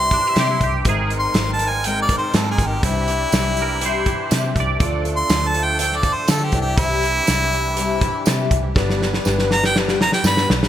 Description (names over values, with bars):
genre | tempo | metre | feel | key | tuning
folk rock and heartland rock | 121 BPM | 4/4 | straight | C major | A4 = 437 Hz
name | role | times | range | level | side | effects
clear harmonica | melody | 0.0-10.5 s | E4 to C6 | -21 LUFS | right 1 dB | ping-pong delay
picked twelve-string acoustic guitar | accompaniment | 0.0-10.7 s | G2 to Bb4 | -25 LUFS | left 6 dB | analog chorus
musette accordion | sustained chords | 0.0-10.7 s | E3 to B4 | -31 LUFS | right 3 dB | none
vintage muted picked electric bass | bass | 0.0-10.7 s | G1 to D3 | -24 LUFS | equal | none
twangy electric guitar | second line | 0.1-5.0 s | D4 to D5 | -26 LUFS | right 4 dB | analog chorus
loose indie drum kit | drums | 0.1-10.7 s | hi-hat, kick drum, snare drum | -20 LUFS | equal | gated reverb
warm concert grand piano | accompaniment | 2.8-10.7 s | E4 to D5 | -33 LUFS | right 4 dB | lush chorus
tambourine | percussion | 3.3-10.4 s | none | -30 LUFS | right 8 dB | none
room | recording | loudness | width
moderate plate reverb, RT60 2.0 s | bright 1980s-style digital production | -16 LUFS | side -11 dB against mid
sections
0.0-10.7 A section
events
harmonica solo 0.0-10.7; drum fill 8.8-10.7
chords
0.0 Cadd9; 0.9 Abadd9; 2.8 Cadd9; 4.8 Dm; 6.5 Cadd9; 8.8 G